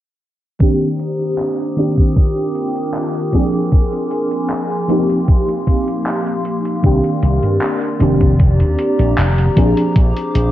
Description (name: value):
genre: vaporwave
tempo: 77 BPM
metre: 4/4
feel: straight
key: C minor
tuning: A4 = 439 Hz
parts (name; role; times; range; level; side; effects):
- mellow FM electric piano; accompaniment; 0.6-10.5 s; Eb3 to Ab4; -17 LUFS; equal; ensemble chorus, analog delay
- warbly tape-like pad; sustained chords; 1.1-10.5 s; Bb3 to Eb6; -24 LUFS; left 1 dB; chorus, built-in reverb
- electronic kick drum; drums; 0.6-10.1 s; none; -13 LUFS; equal; none
- gated 80s digital drum machine; drums; 0.6-10.5 s; handclaps, hi-hat; -27 LUFS; equal; gated reverb
- slap bass with an envelope filter; bass; 6.8-10.5 s; F1 to G2; -14 LUFS; equal; none
room: light reverb, digital ambience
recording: cassette tape, low-pass filter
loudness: -13 LUFS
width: side -13 dB against mid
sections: 0.6-10.5 A section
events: filter sweep 0.6-10.5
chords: 0.6 Cm9; 1.8 F13sus4; 3.3 Bb9; 4.9 Eb69; 6.8 Cm9; 8.0 F13sus4; 9.6 Bb9